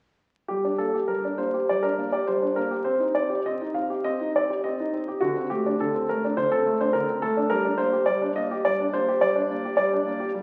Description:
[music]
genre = classical-period piano sonatina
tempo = 104 BPM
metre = 4/4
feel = rubato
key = G minor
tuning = A4 = 440 Hz
[part]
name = clear grand piano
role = solo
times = 0.5-10.4 s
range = D3 to F5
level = -25 LUFS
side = equal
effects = none
[sound]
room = wet recital hall reverb, RT60 1.6 s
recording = very old 78 rpm record, vinyl crackle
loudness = -25 LUFS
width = mono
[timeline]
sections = 0.5-10.4 A section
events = none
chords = 0.5 Gm; 2.9 Cm; 5.2 D5; 7.5 Gm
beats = | 0.50 1.08 1.68 2.27 | 2.86 3.45 4.04 4.62 | 5.21 5.78 6.35 6.93 | 7.50 8.07 8.65 9.22 | 9.79 10.35

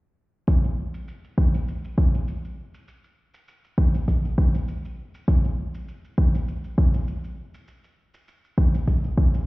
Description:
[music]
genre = downtempo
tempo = 100 BPM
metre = 4/4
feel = swing 54% on 16ths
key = none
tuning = none
[part]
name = electronic kick drum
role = drums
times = 0.5-9.3 s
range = none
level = -19 LUFS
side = equal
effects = none
[part]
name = shaker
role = drums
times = 0.5-9.5 s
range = none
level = -54 LUFS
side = right 2 dB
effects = low-pass filter on perc, low-pass filter on room
[sound]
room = little or no reverb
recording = heard muffled through a wall, stone room reverb, EQ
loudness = -21 LUFS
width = side -21 dB against mid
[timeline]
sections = 0.5-9.5 A section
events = none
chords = none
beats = | 0.48 1.08 1.68 2.28 | 2.88 3.48 4.08 4.68 | 5.28 5.88 6.48 7.08 | 7.68 8.28 8.88

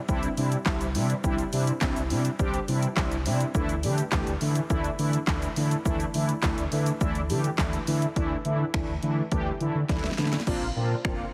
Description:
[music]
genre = dance-pop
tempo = 104 BPM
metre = 4/4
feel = straight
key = unclear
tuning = A4 = 441 Hz
[part]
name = mellow synth brass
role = accompaniment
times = 0.1-11.2 s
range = E3 to G4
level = -31 LUFS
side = equal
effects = chorus
[part]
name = sub bass with octave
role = bass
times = 0.1-11.2 s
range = F1 to D3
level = -31 LUFS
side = equal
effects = sidechain pumping
[part]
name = deep house drum kit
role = drums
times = 0.1-11.2 s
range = crash cymbal, finger snaps, handclaps, hi-hat, kick drum, shaker, snare drum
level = -32 LUFS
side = equal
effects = overdrive
[sound]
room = light reverb, digital ambience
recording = heavily compressed radio sound, multiband compression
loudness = -27 LUFS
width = mono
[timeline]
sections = 0.0-8.2 A section; 8.2-10.5 B section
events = drum fill 9.9-10.5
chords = 0.0 Cadd9; 3.5 Dsus2; 10.5 Bbadd9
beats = 0.09 0.66 | 1.24 1.82 2.39 2.97 | 3.55 4.12 4.70 5.28 | 5.86 6.43 7.01 7.59 | 8.16 8.74 9.32 9.89 | 10.47 11.05

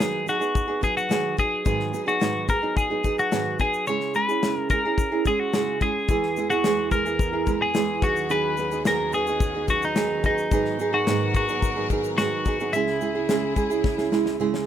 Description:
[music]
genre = acoustic pop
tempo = 108 BPM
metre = 4/4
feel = straight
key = B major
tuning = A4 = 440 Hz
[part]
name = twelve-string electric guitar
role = melody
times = 0.0-14.4 s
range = D#4 to C#5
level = -25 LUFS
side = left 2 dB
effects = none
[part]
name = nylon-string guitar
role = accompaniment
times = 0.0-14.7 s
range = G#2 to G#4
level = -25 LUFS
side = right 4 dB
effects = none
[part]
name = natural country drum kit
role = drums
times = 0.0-14.7 s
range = kick drum, shaker, snare drum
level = -26 LUFS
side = left 2 dB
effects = none
[part]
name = warm studio string section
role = sustained chords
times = 6.1-14.7 s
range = C#2 to A#4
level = -34 LUFS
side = left 1 dB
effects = none
[sound]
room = light reverb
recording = close, detailed microphones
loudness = -21 LUFS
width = side -10 dB against mid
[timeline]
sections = 0.0-14.7 A section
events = drum fill 13.8-14.7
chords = 0.0 B6/D#; 1.7 G#m7; 3.9 C#m; 6.1 E; 8.0 B6/D#; 10.5 G#m7; 12.7 C#m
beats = 0.00 0.55 1.11 | 1.66 2.21 2.77 3.32 | 3.87 4.42 4.98 5.53 | 6.09 6.64 7.19 7.75 | 8.30 8.85 9.41 9.96 | 10.52 11.07 11.62 12.18 | 12.73 13.29 13.84 14.40

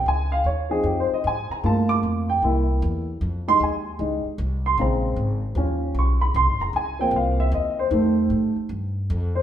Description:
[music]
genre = jazz, big band swing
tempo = 152 BPM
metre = 4/4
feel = swing 65% on 8ths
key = F minor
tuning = A4 = 440 Hz
[part]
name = warm upright piano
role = accompaniment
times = 0.0-9.4 s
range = Db3 to D6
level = -22 LUFS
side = right 1 dB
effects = none
[part]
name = upright bass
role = bass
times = 0.0-9.4 s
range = F1 to A2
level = -24 LUFS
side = equal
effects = none
[sound]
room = wet stone room reverb, RT60 1.3 s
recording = band playing live in one room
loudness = -20 LUFS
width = side -10 dB against mid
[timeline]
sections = 0.1-9.4 A section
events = upright piano solo 0.0-9.4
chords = 0.1 Dbmaj7; 1.6 Gm7; 2.4 C7; 3.2 Fm7; 4.8 Bbm7; 5.6 Eb7; 6.4 Ab69; 7.9 F7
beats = | 0.05 0.45 0.84 1.24 | 1.63 2.02 2.42 2.81 | 3.21 3.60 4.00 4.39 | 4.78 5.18 5.57 5.96 | 6.36 6.75 7.14 7.54 | 7.93 8.32 8.71 9.10

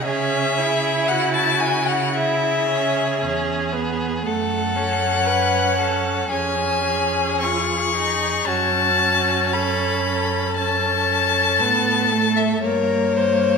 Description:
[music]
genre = classical, slow romantic movement for string quartet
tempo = 58 BPM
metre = 4/4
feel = rubato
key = C# minor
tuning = A4 = 439 Hz
[part]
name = clear violin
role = melody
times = 0.0-13.6 s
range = Db5 to C#6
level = -20 LUFS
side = left 6 dB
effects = none
[part]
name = rich violin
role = second line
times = 0.0-13.6 s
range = F#4 to B#4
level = -26 LUFS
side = equal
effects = none
[part]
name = clear viola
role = accompaniment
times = 0.0-13.6 s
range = A3 to E#4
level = -24 LUFS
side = right 4 dB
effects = none
[part]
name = rich cello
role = bass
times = 0.0-13.6 s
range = E2 to C#3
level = -27 LUFS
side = right 5 dB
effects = none
[sound]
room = wet concert hall reverb, RT60 1.8 s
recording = minimal, uncompressed stereo recording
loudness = -18 LUFS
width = side -5 dB against mid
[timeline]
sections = 0.0-13.6 A section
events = none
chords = 0.0 C#m; 4.2 F#m; 6.3 C#/E#; 8.5 F#m; 12.6 Gdim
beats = | 0.03 1.09 2.15 3.21 | 4.25 5.26 6.30 7.41 | 8.46 9.52 10.57 11.60 | 12.63

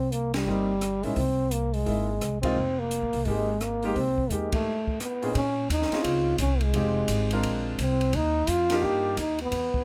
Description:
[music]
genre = jazz, small-group swing and bop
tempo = 172 BPM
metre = 4/4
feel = swing 63% on 8ths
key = F minor, Bb minor from 5.3 s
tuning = A4 = 440 Hz
[part]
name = breathy trombone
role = melody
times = 0.0-9.8 s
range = G3 to G4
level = -29 LUFS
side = equal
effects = none
[part]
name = upright bass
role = bass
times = 0.0-9.8 s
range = F1 to Bb2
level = -32 LUFS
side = equal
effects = none
[part]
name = open jazz drum kit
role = drums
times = 0.1-9.8 s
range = hi-hat, kick drum, ride cymbal, rim click, snare drum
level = -36 LUFS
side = equal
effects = none
[part]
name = clear baby grand piano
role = accompaniment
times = 0.5-9.2 s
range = Bb2 to Bb4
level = -33 LUFS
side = equal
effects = none
[sound]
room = light reverb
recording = none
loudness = -26 LUFS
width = mono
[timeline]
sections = 0.0-5.3 A section; 5.3-9.8 B section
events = band accent 0.3, 2.4, 4.5; break 4.7-5.3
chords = 0.0 Cm7; 1.2 C7alt; 2.6 Fm11; 4.7 B13b9; 5.3 Bbm11; 6.7 Fm9; 7.4 Bb9; 8.1 Ebmaj9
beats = 0.12 0.47 0.82 | 1.17 1.52 1.87 2.21 | 2.56 2.91 3.26 3.61 | 3.96 4.30 4.65 5.00 | 5.35 5.70 6.05 6.39 | 6.74 7.09 7.44 7.79 | 8.13 8.48 8.83 9.18 | 9.53

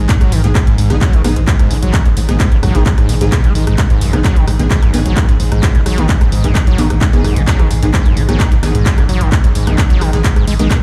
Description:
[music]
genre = driving peak-time techno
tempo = 130 BPM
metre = 4/4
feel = straight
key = G# minor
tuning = A4 = 440 Hz
[part]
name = screaming distorted acid line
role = riff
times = 0.0-10.8 s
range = F#2 to G#3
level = -21 LUFS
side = equal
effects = distortion, chorus, sidechain pumping, delay
[part]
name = growling 808-style bass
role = bass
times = 0.0-10.7 s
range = G#1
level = -18 LUFS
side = equal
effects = tube saturation, sidechain pumping, low-pass filter
[part]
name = overtone-sweeping drone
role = drone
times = 0.0-10.8 s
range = G#2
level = -25 LUFS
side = equal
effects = chorus, built-in reverb, phaser, sidechain pumping
[part]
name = electronic kick drum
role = drums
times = 0.1-10.8 s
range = none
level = -15 LUFS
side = equal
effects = none
[part]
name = techno drum kit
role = drums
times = 0.1-10.8 s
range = handclaps, hi-hat, rim click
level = -24 LUFS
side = equal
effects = sidechain pumping on hats, sidechain pumping on cymbals
[part]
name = rave stab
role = stabs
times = 0.4-10.7 s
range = D#3 to G#4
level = -24 LUFS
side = equal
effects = chorus, built-in reverb, sidechain pumping, delay
[sound]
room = digital ambience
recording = played on a big sound system in a bare room, large studio reverb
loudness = -12 LUFS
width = mono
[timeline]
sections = 0.0-10.8 A section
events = none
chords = 0.0 G#m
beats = | 0.09 0.55 1.01 1.48 | 1.94 2.40 2.86 3.32 | 3.78 4.25 4.71 5.17 | 5.63 6.09 6.55 7.01 | 7.47 7.94 8.40 8.86 | 9.32 9.78 10.24 10.71

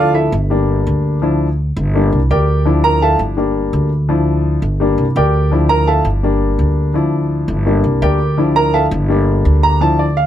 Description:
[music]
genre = latin, salsa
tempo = 168 BPM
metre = 4/4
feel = straight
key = unclear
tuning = A4 = 439 Hz
[part]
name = clear grand piano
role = accompaniment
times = 0.0-10.3 s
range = F3 to Bb5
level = -15 LUFS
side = left 1 dB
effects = none
[part]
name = upright bass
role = bass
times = 0.0-10.3 s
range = G1 to D2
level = -15 LUFS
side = equal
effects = none
[sound]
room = light reverb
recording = none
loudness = -12 LUFS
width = side -11 dB against mid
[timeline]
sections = 0.0-10.3 A section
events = grand piano solo 0.0-10.3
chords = 0.0 Dmadd9; 0.5 Gm; 1.2 Dmadd9; 1.9 Gm; 2.7 Dmadd9; 3.4 Gm; 4.1 Dmadd9; 4.8 Gm; 5.5 Dmadd9; 6.2 Gm; 7.0 Dmadd9; 7.7 Gm; 8.4 Dmadd9; 9.1 Gm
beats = 0.14 0.50 0.86 | 1.22 1.58 1.94 2.30 | 2.65 3.01 3.37 3.73 | 4.09 4.45 4.80 5.16 | 5.52 5.88 6.24 6.59 | 6.95 7.31 7.67 8.03 | 8.38 8.74 9.10 9.46 | 9.82 10.17

